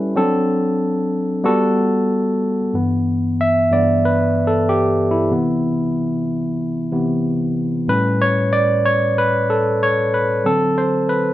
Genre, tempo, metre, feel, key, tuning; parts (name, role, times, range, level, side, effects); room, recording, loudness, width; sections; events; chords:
soul; 93 BPM; 4/4; swing 54% on 16ths; G major; A4 = 440 Hz
barky tine electric piano; solo; 0.0-11.3 s; G2 to E5; -16 LUFS; equal
moderate large studio reverb, RT60 0.9 s; band playing live in one room, nothing above 10.6 kHz; -16 LUFS; side -14 dB against mid
0.0-2.7 A section; 2.7-11.3 B section
tine electric piano solo 2.7-11.3
0.2 D7; 1.5 Gmaj9; 2.7 G6; 5.3 Cmaj7; 7.9 A7; 10.4 D7